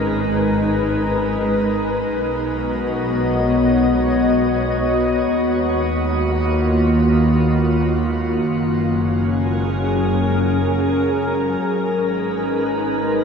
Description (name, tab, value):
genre	ambient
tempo	free time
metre	none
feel	none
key	G# dorian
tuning	A4 = 440 Hz
part	glassy FM pad	sustained chords	0.0-13.2 s	D#3 to D#5	-17 LUFS	left 1 dB	ensemble chorus, built-in reverb
part	dark studio double bass section	bass	0.0-13.2 s	F#1 to D#2	-24 LUFS	equal	none
part	bowed-like drone	drone	0.0-11.7 s	G#3	-31 LUFS	right 1 dB	built-in reverb
room	wet shimmer reverb, RT60 8.9 s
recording	none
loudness	-16 LUFS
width	side -6 dB against mid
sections	0.0-11.6 A section; 11.6-13.2 B section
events	fade-out on synth drone 0.0-11.6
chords	0.0 G#m; 2.1 Bmaj7; 5.3 D#m7; 8.5 F#; 11.6 G#m